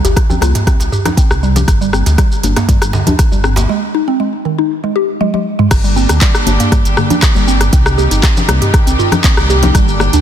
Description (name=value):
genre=afro house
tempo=119 BPM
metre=4/4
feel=straight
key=G phrygian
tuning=A4 = 439 Hz
part: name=mallet-like synth pluck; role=arpeggios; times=0.0-10.2 s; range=D3 to G4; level=-17 LUFS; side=right 1 dB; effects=chorus, phaser, sidechain pumping, ping-pong delay
part: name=dark detuned saw bass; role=bass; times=0.0-10.2 s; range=G1 to D2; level=-14 LUFS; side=equal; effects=sidechain pumping
part: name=afro-pop drum kit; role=drums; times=0.0-10.2 s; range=crash cymbal, handclaps, hi-hat, rim click, shaker, toms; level=-16 LUFS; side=equal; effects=studio reverb
part: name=djembe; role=percussion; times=0.0-3.7 s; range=none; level=-23 LUFS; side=right 2 dB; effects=none
part: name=electronic kick drum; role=drums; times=0.2-9.9 s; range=none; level=-12 LUFS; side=equal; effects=studio reverb
part: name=congas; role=percussion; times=0.3-10.1 s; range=none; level=-20 LUFS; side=left 5 dB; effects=none
part: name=rich studio string section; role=sustained chords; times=5.7-10.2 s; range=Bb2 to G4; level=-19 LUFS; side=equal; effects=sidechain pumping
room=light reverb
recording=dense, heavily limited modern master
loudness=-10 LUFS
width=side -10 dB against mid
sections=0.0-5.7 A section; 5.7-10.2 B section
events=break 3.7-5.7; drum fill 5.2-5.7; drop 5.7-10.2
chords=0.0 C5; 1.7 G5; 3.7 Ab5; 5.7 Gm; 7.7 Cm